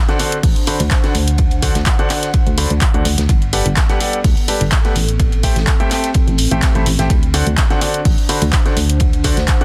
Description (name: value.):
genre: piano house.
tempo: 126 BPM.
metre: 4/4.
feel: swing 54% on 16ths.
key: D mixolydian.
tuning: A4 = 440 Hz.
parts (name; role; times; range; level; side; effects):
warbly tape-like pad; texture; 0.1-9.6 s; B3 to G5; -29 LUFS; equal; chorus, built-in reverb, sidechain pumping.
warm concert grand piano; riff; 0.1-9.6 s; D3 to B5; -24 LUFS; equal; sidechain pumping, tape echo.
compact cocktail drum kit; drums; 0.1-9.6 s; hi-hat, ride cymbal, snare drum; -34 LUFS; equal; none.
punchy analog drum machine; drums; 0.1-9.6 s; handclaps, hi-hat; -24 LUFS; equal; none.
solid FM bass; bass; 0.4-9.5 s; G1 to D2; -19 LUFS; equal; sidechain pumping.
electronic kick drum; drums; 0.4-9.6 s; none; -18 LUFS; equal; none.
room: small room ambience.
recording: dense, heavily limited modern master.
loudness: -15 LUFS.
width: mono.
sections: 0.0-9.6 A section.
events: none.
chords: 0.0 D7; 3.3 Gmaj9; 5.0 Am7; 7.1 D7.